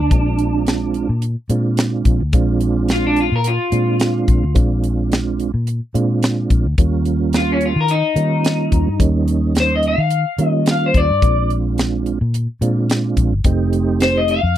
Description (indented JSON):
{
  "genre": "straight-eighth soul blues",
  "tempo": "108 BPM",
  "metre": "4/4",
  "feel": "swing 55% on 16ths",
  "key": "Bb mixolydian",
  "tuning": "A4 = 441 Hz",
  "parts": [
    { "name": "electric guitar through a small old amp", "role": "melody", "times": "0.0-14.6 s", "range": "Db4 to F5", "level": "-19 LUFS", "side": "left 3 dB", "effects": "lush chorus" },
    { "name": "vintage muted fingered electric bass", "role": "bass", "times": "0.0-14.6 s", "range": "F1 to Eb3", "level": "-19 LUFS", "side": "left 1 dB", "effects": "none" },
    { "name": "percussive tonewheel organ", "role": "accompaniment", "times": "0.1-14.4 s", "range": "G3 to G4", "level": "-20 LUFS", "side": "right 6 dB", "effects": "slow rotary speaker, chorus vibrato" },
    { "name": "tight funk drum kit", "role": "drums", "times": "0.1-14.6 s", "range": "hi-hat, kick drum, snare drum", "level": "-17 LUFS", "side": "equal", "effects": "none" }
  ],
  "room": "little or no reverb",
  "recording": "dry, close 1970s-style studio recording",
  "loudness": "-15 LUFS",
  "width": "side -12 dB against mid",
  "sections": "0.0-14.6 A section",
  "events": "none",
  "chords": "0.0 Bb9; 6.8 Eb9; 11.2 Bb9; 13.4 F9",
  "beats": "| 0.11 0.67 1.22 1.78 | 2.33 2.89 3.44 4.00 | 4.56 5.11 5.67 6.22 | 6.78 7.33 7.89 8.45 | 9.00 9.56 10.11 10.67 | 11.22 11.78 12.33 12.89 | 13.45 14.00 14.55"
}